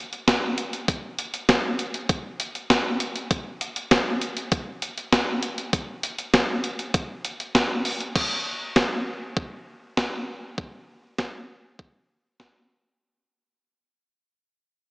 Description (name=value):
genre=pop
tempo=99 BPM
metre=4/4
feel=straight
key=none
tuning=none
part: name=clean 12-bit digital drum machine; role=drums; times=0.1-12.5 s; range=crash cymbal, hi-hat, kick drum, snare drum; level=-22 LUFS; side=equal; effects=none
room=wet echo chamber reverb, RT60 2.5 s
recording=small speaker sound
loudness=-23 LUFS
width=side -26 dB against mid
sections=0.0-8.2 A section; 8.2-13.0 B section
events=fade-out 8.2-13.0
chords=none